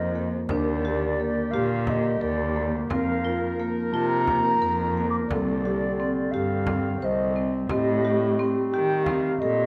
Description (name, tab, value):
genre	contemporary instrumental, chamber music in an uneven meter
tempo	175 BPM (eighths)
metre	7/8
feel	straight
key	C dorian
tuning	A4 = 439 Hz
part	mellow wooden flute	melody	0.0-9.7 s	D5 to D6	-31 LUFS	equal	none
part	vibraphone with soft mallets	second line	0.0-9.7 s	G4 to C5	-33 LUFS	equal	none
part	warm woodwind section	sustained chords	0.0-9.7 s	D3 to Bb4	-38 LUFS	equal	none
part	dark cello	bass	0.0-9.7 s	C2 to Eb3	-31 LUFS	equal	none
part	marimba with medium mallets	arpeggios	0.2-9.6 s	Bb3 to C5	-30 LUFS	equal	none
part	frame drum	percussion	0.5-9.4 s	none	-35 LUFS	equal	none
room	moderate recital hall reverb, RT60 1.5 s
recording	none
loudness	-25 LUFS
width	mono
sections	0.0-9.7 A section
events	none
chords	0.5 Ebmaj7; 2.9 F7sus4; 5.3 Cmadd9; 7.7 Am7b5